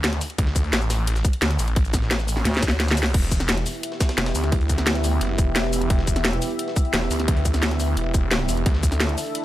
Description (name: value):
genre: dark technical drum and bass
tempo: 174 BPM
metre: 4/4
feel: straight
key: E minor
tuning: A4 = 441 Hz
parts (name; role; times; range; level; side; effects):
- snarling distorted saw bass; bass; 0.0-9.2 s; E1 to D2; -23 LUFS; equal; distortion, tube saturation
- breakbeat sampler-style drum kit; drums; 0.0-9.4 s; hi-hat, snare drum; -35 LUFS; equal; none
- drum and bass drum kit; drums; 0.0-9.4 s; crash cymbal, hi-hat, shaker, snare drum; -24 LUFS; left 1 dB; overdrive
- electronic kick drum; drums; 0.4-8.9 s; none; -21 LUFS; equal; overdrive
- growling FM bass; bass; 2.5-2.6 s; D2; -21 LUFS; equal; none
- dark analog pad; sustained chords; 3.6-9.4 s; B3 to E5; -28 LUFS; right 1 dB; chorus, vintage 12-bit sampler grit, sidechain pumping
room: little or no reverb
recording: none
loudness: -19 LUFS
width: side -14 dB against mid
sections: 0.0-3.1 A section; 3.1-9.4 A section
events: drop 0.0-3.1, 3.1-9.4; drum fill 2.5-3.1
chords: 0.0 D5; 3.1 Em; 8.7 Dsus2